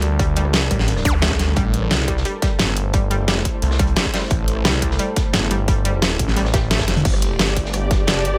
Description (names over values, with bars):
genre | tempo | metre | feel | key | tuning
dark technical drum and bass | 175 BPM | 4/4 | straight | unclear | A4 = 440 Hz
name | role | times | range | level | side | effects
deep dark ambient pad | sustained chords | 0.0-8.4 s | G3 to C5 | -32 LUFS | equal | chorus, built-in reverb, sidechain pumping
growling FM bass | bass | 0.0-7.0 s | G1 to D2 | -23 LUFS | equal | none
crunchy breakbeat drum kit | drums | 0.0-8.3 s | hi-hat, snare drum | -32 LUFS | equal | none
dubstep drum kit | drums | 0.0-8.4 s | crash cymbal, hi-hat, rim click, snare drum, toms | -23 LUFS | equal | overdrive
analog pluck | arpeggios | 0.2-6.8 s | G3 to G4 | -30 LUFS | equal | chorus, sidechain pumping, dub echo
electronic kick drum | drums | 0.2-8.0 s | none | -24 LUFS | equal | overdrive
phased detuned saw bass | bass | 0.7-4.6, 7.1-8.4 s | G1 to D2 | -23 LUFS | equal | phaser, sidechain pumping
zap | sound effects | 1.1 s | none | -30 LUFS | equal | none
muted studio string section | texture | 7.0-8.4 s | G4 to A5 | -27 LUFS | equal | sidechain pumping
room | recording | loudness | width
little or no reverb | none | -19 LUFS | mono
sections
0.0-7.1 A section; 7.1-8.4 A section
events
drop 0.0-7.1, 7.1-8.4; drum fill 6.9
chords
0.0 Gm; 1.6 Am; 7.1 Gm